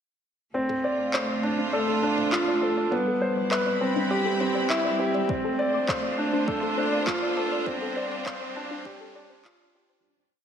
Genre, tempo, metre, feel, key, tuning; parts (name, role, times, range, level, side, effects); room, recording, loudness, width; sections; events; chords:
piano and strings electronica; 101 BPM; 4/4; straight; D dorian; A4 = 440 Hz
rich symphonic string section; sustained chords; 0.5-10.0 s; G3 to B5; -30 LUFS; right 1 dB
soft round pluck; arpeggios; 0.5-10.0 s; D4 to D6; -34 LUFS; left 4 dB; chorus, sidechain pumping, digital delay
warm grand piano; riff; 0.5-10.1 s; B3 to D5; -26 LUFS; equal; digital delay
warm sub bass; bass; 0.5-10.0 s; G1 to D2; -58 LUFS; equal
riser; sound effects; 1.6-10.0 s; -40 LUFS; right 2 dB
organic electronic drum kit; drums; 0.7-9.7 s; handclaps, toms; -32 LUFS; equal; high-pass filter on toms, high-pass filter on snare, high-pass filter on room
electronic kick drum; drums; 5.3-9.6 s; -35 LUFS; equal
moderate echo chamber reverb, RT60 2.0 s; high-pass filter; -23 LUFS; side -8 dB against mid
0.5-10.0 build
build-up 0.5-10.0; filter sweep on synth arpeggio sound 0.5-10.0; riser 1.6-10.0; fade-out 6.9-10.0
0.5 Dm7; 2.9 Cmaj7; 5.3 Dm7; 7.7 G7sus4